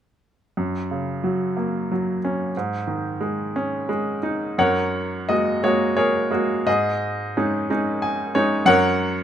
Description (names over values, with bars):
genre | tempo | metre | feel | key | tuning
classical, lyrical solo piano | 59 BPM (dotted quarters) | 6/8 | uneven beats, rubato | Gb major | A4 = 439 Hz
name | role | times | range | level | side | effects
bright baby grand piano | solo | 0.6-9.2 s | Gb2 to Ab5 | -20 LUFS | equal | none
room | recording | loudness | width
moderate studio reverb, RT60 0.5 s | none | -20 LUFS | side -9 dB against mid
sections
0.6-4.6 A section; 4.6-9.2 B section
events
grand piano fill 7.7-8.7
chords
0.6 Gb; 2.5 Absus4; 4.6 Gbadd9; 6.7 Absus4; 8.7 Gb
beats
| 0.55 1.56 | 2.54 3.53 | 4.57 5.63 | 6.67 7.69 | 8.67